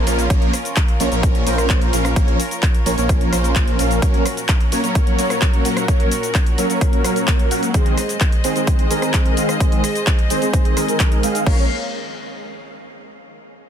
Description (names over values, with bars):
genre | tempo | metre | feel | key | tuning
EDM, festival progressive house | 129 BPM | 4/4 | straight | Bb minor | A4 = 440 Hz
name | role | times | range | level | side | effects
warm studio string section | sustained chords | 0.0-11.7 s | Bb2 to F5 | -27 LUFS | equal | sidechain pumping
supersaw chords | riff | 0.0-11.6 s | Eb3 to Gb5 | -21 LUFS | right 1 dB | wide subtle chorus, sidechain pumping, low-pass filter, ping-pong delay
wide detuned saw bass | bass | 0.0-4.0, 11.5-11.7 s | Bb1 | -22 LUFS | equal | chorus, sidechain pumping
big-room dance drum kit | drums | 0.1-11.6 s | crash cymbal, handclaps, hi-hat, rim click, shaker | -25 LUFS | left 1 dB | overdrive
electronic kick drum | drums | 0.3-11.6 s | none | -16 LUFS | equal | overdrive
room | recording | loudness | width
digital ambience | dense, heavily limited modern master | -15 LUFS | side -8 dB against mid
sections
0.0-11.5 A section; 11.5-13.3 B section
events
filter sweep on supersaw synth 0.0-11.5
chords
0.0 Bbm; 4.0 Gb/Bb; 7.7 Ab; 11.5 Bbm